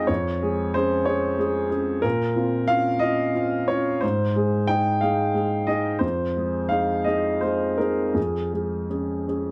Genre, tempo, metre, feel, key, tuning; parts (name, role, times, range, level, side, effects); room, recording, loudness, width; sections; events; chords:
neoclassical minimalist piano; 53-62 BPM (dotted quarters); 6/8; rubato; A4 = 440 Hz
dark grand piano; solo; 0.0-9.5 s; F2 to G5; -24 LUFS; equal
light reverb; -24 LUFS; mono
0.0-9.5 A section
0.1 Db/F; 2.0 Bbmadd9; 4.0 Ab; 6.0 Fm7; 8.2 Db/F